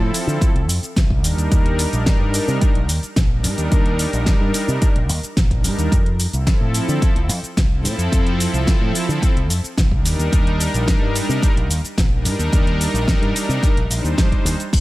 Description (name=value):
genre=nu-disco, nu disco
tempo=109 BPM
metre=4/4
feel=straight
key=unclear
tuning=A4 = 442 Hz
part: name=warm analog pad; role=accompaniment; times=0.0-14.5 s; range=F3 to C5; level=-23 LUFS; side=equal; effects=chorus, tape echo
part: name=picked electric bass with an envelope filter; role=bass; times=0.0-14.8 s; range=Bb1 to D3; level=-21 LUFS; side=equal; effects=none
part: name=pop drum kit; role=drums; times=0.1-14.8 s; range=crash cymbal, hi-hat, shaker, snare drum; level=-24 LUFS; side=equal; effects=small room ambience
part: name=electronic kick drum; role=drums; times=0.4-14.8 s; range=none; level=-17 LUFS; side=equal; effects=small room ambience
room=digital ambience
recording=none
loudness=-16 LUFS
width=side -18 dB against mid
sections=0.0-14.8 A section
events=none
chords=0.0 Fmaj7; 1.2 Ebmaj7; 5.9 Fmaj7; 10.1 Ebmaj7